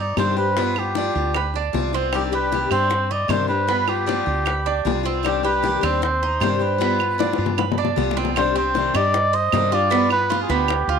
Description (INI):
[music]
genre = latin, Cuban son and guajira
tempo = 154 BPM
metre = 4/4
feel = straight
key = C harmonic minor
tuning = A4 = 440 Hz
[part]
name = trumpet with cup mute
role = melody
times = 0.0-11.0 s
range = G4 to Eb5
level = -22 LUFS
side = equal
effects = none
[part]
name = Cuban tres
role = arpeggios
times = 0.0-11.0 s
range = B3 to C5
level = -25 LUFS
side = right 10 dB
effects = none
[part]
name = woody fretless electric bass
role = bass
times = 0.0-11.0 s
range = C2 to G2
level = -26 LUFS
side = right 1 dB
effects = none
[part]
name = picked steel-string acoustic guitar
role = accompaniment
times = 0.2-10.7 s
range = C3 to G4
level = -25 LUFS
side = left 11 dB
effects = none
[part]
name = bongos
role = percussion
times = 0.2-10.9 s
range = none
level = -27 LUFS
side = left 9 dB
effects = none
[part]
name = claves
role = percussion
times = 0.2-10.9 s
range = none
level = -29 LUFS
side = right 16 dB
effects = none
[sound]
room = moderate echo chamber reverb, RT60 1.3 s, small room ambience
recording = 1960s-style stereo with parts hard left and right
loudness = -18 LUFS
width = side -6 dB against mid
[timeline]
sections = 0.0-8.4 A section; 8.4-11.0 B section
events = drum fill 7.2-8.4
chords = 0.0 Cmadd9; 0.6 G7; 2.1 Cmadd9; 3.7 G7; 5.2 Cmadd9; 6.8 G7; 8.4 Cmadd9; 9.9 G7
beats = 0.17 | 0.56 0.96 1.35 1.74 | 2.13 2.52 2.91 3.30 | 3.69 4.08 4.47 4.86 | 5.25 5.64 6.03 6.42 | 6.81 7.20 7.58 7.97 | 8.36 8.75 9.14 9.53 | 9.92 10.30 10.69